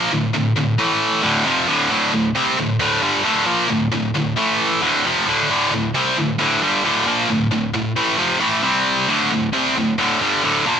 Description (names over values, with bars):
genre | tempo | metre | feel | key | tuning
metal | 134 BPM | 4/4 | straight | D minor | A4 = 440 Hz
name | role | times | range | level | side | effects
heavy high-gain guitar | solo | 0.0-10.8 s | D2 to C4 | -16 LUFS | equal | distortion
room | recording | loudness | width
light reverb | rough home demo mix | -16 LUFS | side -8 dB against mid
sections
0.0-10.8 A section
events
none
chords
0.0 Dm; 0.8 A5; 1.2 Dm; 4.4 A5; 4.8 Dm; 8.6 C5; 9.1 D5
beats
| 0.10 0.55 1.00 1.45 | 1.90 2.35 2.79 3.24 | 3.69 4.14 4.59 5.04 | 5.49 5.94 6.39 6.83 | 7.29 7.73 8.18 8.63 | 9.08 9.53 9.98 10.43